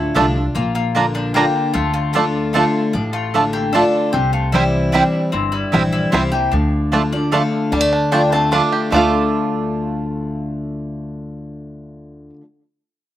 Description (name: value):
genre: bluegrass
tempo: 151 BPM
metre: 3/4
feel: straight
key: D minor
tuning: A4 = 440 Hz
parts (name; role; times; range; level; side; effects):
- mandolin; melody; 0.0-12.3 s; C4 to D6; -24 LUFS; left 3 dB; slapback echo
- lap resonator guitar; second line; 0.0-12.3 s; E3 to F4; -24 LUFS; left 2 dB; slapback echo
- picked steel-string acoustic guitar; accompaniment; 0.0-12.4 s; G2 to F4; -20 LUFS; left 2 dB; slapback echo
- upright bass; bass; 0.0-12.3 s; G1 to D2; -23 LUFS; equal; none
- bluegrass banjo; melody; 0.2-12.4 s; G3 to A4; -20 LUFS; right 3 dB; none
- mandolin; stabs; 0.2-12.4 s; A3 to Bb5; -21 LUFS; right 5 dB; slapback echo
room: little or no reverb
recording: recorded outdoors, with no room sound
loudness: -15 LUFS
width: side -12 dB against mid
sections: 0.0-7.7 A section; 7.7-8.9 B section; 8.9-11.3 C section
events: none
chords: 0.0 Dm; 0.6 Bb; 1.8 Dm; 4.1 C; 6.5 Dm